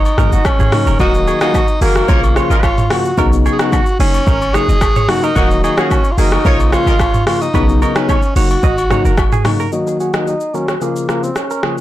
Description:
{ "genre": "afrobeats", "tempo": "110 BPM", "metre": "4/4", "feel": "straight", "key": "Eb minor", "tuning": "A4 = 438 Hz", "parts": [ { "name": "breathy tenor saxophone", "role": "melody", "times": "0.0-11.8 s", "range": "Bb3 to Ab4", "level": "-19 LUFS", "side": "equal", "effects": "low-pass filter, plate reverb" }, { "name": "direct-recorded clean electric guitar", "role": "riff", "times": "0.0-11.7 s", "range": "Gb4 to Eb5", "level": "-24 LUFS", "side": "right 8 dB", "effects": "wide subtle chorus, low-pass filter, ping-pong delay" }, { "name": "clean 808-style bass", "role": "bass", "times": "0.0-9.2 s", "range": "Eb1 to B1", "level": "-15 LUFS", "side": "equal", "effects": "none" }, { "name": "afro-pop drum kit", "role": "drums", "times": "0.1-11.8 s", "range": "hi-hat, kick drum, rim click, shaker, toms", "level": "-16 LUFS", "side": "equal", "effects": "soft clipping on snare" }, { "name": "agogo bells and woodblock", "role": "percussion", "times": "0.1-9.6 s", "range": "none", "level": "-25 LUFS", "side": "left 5 dB", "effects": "none" }, { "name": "tine electric piano", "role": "accompaniment", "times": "0.2-11.8 s", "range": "Db3 to Gb4", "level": "-19 LUFS", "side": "left 4 dB", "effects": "low-pass filter, plate reverb" }, { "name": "clear horn section", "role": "second line", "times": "1.0-6.9 s", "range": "Bb3 to Db5", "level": "-22 LUFS", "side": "equal", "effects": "plate reverb" } ], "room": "light reverb", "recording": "blown-out, overdriven recording, overdrive", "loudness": "-11 LUFS", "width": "side -14 dB against mid", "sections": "0.0-9.7 A section; 9.7-11.8 B section", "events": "none", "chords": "0.0 Gb6; 1.0 Ebm; 2.1 Bbm; 3.2 Badd9; 4.0 Gb6; 5.4 Ebm; 6.5 Bbm; 7.5 Badd9; 8.4 Gb6; 9.7 Ebm; 10.8 Bbm" }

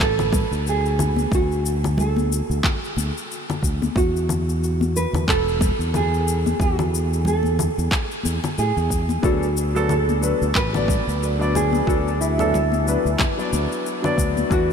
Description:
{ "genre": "sunset chillout", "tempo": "91 BPM", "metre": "4/4", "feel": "swing 57% on 16ths", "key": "D lydian", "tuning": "A4 = 437 Hz", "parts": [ { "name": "nylon-string guitar", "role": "melody", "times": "0.0-14.7 s", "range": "E4 to B4", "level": "-24 LUFS", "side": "right 3 dB", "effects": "analog delay" }, { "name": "fingered electric bass", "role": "bass", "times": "0.0-14.7 s", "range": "E1 to A2", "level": "-23 LUFS", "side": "equal", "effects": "none" }, { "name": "electronic handclaps, shaker and congas", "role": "drums", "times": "0.0-14.7 s", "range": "none", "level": "-27 LUFS", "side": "left 3 dB", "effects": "small room ambience" }, { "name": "electronic kick drum", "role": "drums", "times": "0.0-14.7 s", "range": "none", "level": "-23 LUFS", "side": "equal", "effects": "overdrive, small room ambience" }, { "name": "congas", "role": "percussion", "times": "0.3-14.5 s", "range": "none", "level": "-30 LUFS", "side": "left 4 dB", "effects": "none" }, { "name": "warm concert grand piano", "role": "accompaniment", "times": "9.2-14.7 s", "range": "E3 to D5", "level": "-24 LUFS", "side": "moving between left 7 dB and right 1 dB", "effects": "auto-pan, tape echo" } ], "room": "moderate huge ambient reverb, RT60 8.0 s", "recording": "dreamy mix soaked in reverb", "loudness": "-18 LUFS", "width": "side -7 dB against mid", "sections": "0.0-14.7 A section", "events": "none", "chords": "0.0 D5; 4.0 Esus24; 9.2 D6" }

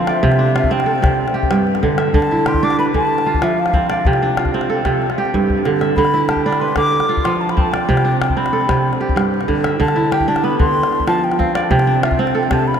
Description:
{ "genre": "west african traditional, West African string and xylophone music", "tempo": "125 BPM (dotted quarters)", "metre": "12/8", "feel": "straight", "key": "unclear", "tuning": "A4 = 440 Hz", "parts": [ { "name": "mellow hollow silver concert flute", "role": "melody", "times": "0.0-12.8 s", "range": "E5 to D6", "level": "-20 LUFS", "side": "left 2 dB", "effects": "analog delay" }, { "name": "kora", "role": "arpeggios", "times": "0.0-12.8 s", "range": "G2 to E5", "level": "-16 LUFS", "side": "right 2 dB", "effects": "analog delay" }, { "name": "calabash", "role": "percussion", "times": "0.1-12.8 s", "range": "none", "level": "-22 LUFS", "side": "left 2 dB", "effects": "none" } ], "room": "wet huge ambient reverb, RT60 6.2 s", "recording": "dreamy mix soaked in reverb", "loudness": "-14 LUFS", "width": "side -8 dB against mid", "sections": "0.0-12.8 A section", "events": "drum fill 5.3-6.0", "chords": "0.2 C; 1.2 G5; 2.1 D5; 3.1 F; 4.1 C5; 5.0 G5; 6.0 D13sus4; 6.9 F5; 7.9 C5; 8.8 G5; 9.8 D5; 10.8 F5; 11.7 C5" }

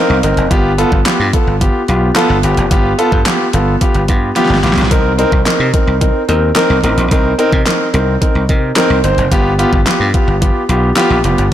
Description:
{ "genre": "dance-pop", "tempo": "109 BPM", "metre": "4/4", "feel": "straight", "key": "unclear", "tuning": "A4 = 440 Hz", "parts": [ { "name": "warm concert grand piano", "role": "accompaniment", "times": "0.0-11.4 s", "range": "B3 to F5", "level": "-14 LUFS", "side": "equal", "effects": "sidechain pumping" }, { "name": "dry thumbed slap bass", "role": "bass", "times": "0.1-11.5 s", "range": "F1 to C3", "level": "-15 LUFS", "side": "equal", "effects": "sidechain pumping" }, { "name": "pop drum kit", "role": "drums", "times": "0.2-11.5 s", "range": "handclaps, hi-hat, kick drum, snare drum", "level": "-15 LUFS", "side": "equal", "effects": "overdrive" } ], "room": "light reverb, digital ambience", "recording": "blown-out, overdriven recording, overdrive", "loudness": "-10 LUFS", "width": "side -11 dB against mid", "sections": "0.0-11.5 A section", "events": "grand piano fill 0.0-0.5; drum fill 4.4-4.9", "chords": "0.0 Cm7; 0.5 G7; 4.9 Cm7; 9.3 G7" }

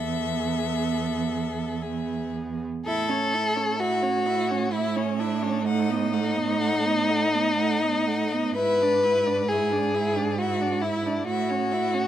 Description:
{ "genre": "classical, slow romantic movement for string quartet", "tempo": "52-71 BPM", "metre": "3/4", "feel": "rubato", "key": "A major", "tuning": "A4 = 438 Hz", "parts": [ { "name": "rich violin", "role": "melody", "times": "0.0-12.1 s", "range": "C#5 to F#5", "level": "-34 LUFS", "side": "left 8 dB", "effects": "none" }, { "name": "warm violin", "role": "second line", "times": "0.0-12.1 s", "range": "C#4 to B4", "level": "-25 LUFS", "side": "left 2 dB", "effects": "none" }, { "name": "dark viola", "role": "accompaniment", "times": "0.0-12.1 s", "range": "A3 to E4", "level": "-31 LUFS", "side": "right 4 dB", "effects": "none" }, { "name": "warm cello", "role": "bass", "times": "0.0-12.1 s", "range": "E2 to A2", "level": "-29 LUFS", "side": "right 6 dB", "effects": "none" } ], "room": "light reverb", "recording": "close, detailed microphones", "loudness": "-22 LUFS", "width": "side -11 dB against mid", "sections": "0.0-2.9 A section; 2.9-12.1 B section", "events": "none", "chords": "0.0 Esus4; 2.9 A; 5.7 B7/A; 8.6 E7/G#; 11.3 A" }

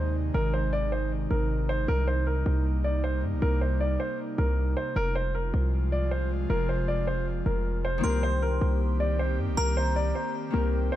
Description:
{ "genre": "hip hop", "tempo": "156 BPM", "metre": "4/4", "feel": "half-time", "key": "C minor", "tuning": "A4 = 441 Hz", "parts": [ { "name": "dark concert grand piano", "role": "melody", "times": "0.0-11.0 s", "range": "Bb4 to D5", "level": "-31 LUFS", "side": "equal", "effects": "ping-pong delay" }, { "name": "airy breathy pad", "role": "sustained chords", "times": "0.0-11.0 s", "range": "C3 to G4", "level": "-33 LUFS", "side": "right 1 dB", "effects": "chorus" }, { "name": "hard-hitting 808-style bass", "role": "bass", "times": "0.0-10.9 s", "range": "F1 to G2", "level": "-27 LUFS", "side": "equal", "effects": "none" }, { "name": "glassy synth bell", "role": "second line", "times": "8.0-10.7 s", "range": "Bb5 to C6", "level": "-35 LUFS", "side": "equal", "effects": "chorus, ping-pong delay" }, { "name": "Celtic harp", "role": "accompaniment", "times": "8.0-11.0 s", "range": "Eb3 to C5", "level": "-34 LUFS", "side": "left 9 dB", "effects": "none" } ], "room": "small room reverb", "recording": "dark, warm production", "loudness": "-25 LUFS", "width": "side -13 dB against mid", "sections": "0.0-8.0 A section; 8.0-11.0 B section", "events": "none", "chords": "0.0 Ab; 1.9 Cm7; 5.0 Fm; 8.0 Cm7" }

